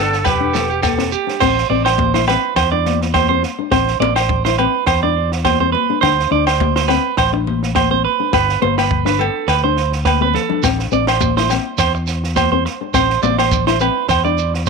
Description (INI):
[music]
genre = highlife guitar band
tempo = 104 BPM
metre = 4/4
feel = swing 55% on 16ths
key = A minor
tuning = A4 = 444 Hz
[part]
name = warm trumpet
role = melody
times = 0.0-1.1 s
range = G4 to A4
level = -22 LUFS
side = right 1 dB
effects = none
[part]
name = raspy alto saxophone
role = second line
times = 0.0-1.1 s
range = B3 to D4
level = -27 LUFS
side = left 15 dB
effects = none
[part]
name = nylon-string guitar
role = accompaniment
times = 0.0-14.5 s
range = B3 to F4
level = -21 LUFS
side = left 17 dB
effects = none
[part]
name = clean electric guitar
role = arpeggios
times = 0.0-14.7 s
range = G4 to D5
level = -17 LUFS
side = right 15 dB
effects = tape echo
[part]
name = mellow fretless electric bass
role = bass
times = 0.0-14.7 s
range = E1 to E2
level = -21 LUFS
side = left 1 dB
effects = none
[part]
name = compact cocktail drum kit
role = drums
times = 0.1-14.7 s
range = crash cymbal, kick drum, snare drum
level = -23 LUFS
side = right 4 dB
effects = none
[part]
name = shekere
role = percussion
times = 0.1-1.3, 10.6-14.7 s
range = none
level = -25 LUFS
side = right 5 dB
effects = none
[part]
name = agogo bells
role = percussion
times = 0.2-14.3 s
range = none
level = -22 LUFS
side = left 14 dB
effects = none
[part]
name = congas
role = percussion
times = 0.3-14.2 s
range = none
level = -24 LUFS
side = left 16 dB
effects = none
[sound]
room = light reverb, small room ambience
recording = 1960s-style stereo with parts hard left and right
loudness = -14 LUFS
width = side -4 dB against mid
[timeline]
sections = 0.0-1.4 A section; 1.4-14.7 B section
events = drum fill 10.1-10.6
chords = 0.3 Em; 1.4 Am; 6.0 D5; 8.3 G; 10.6 Am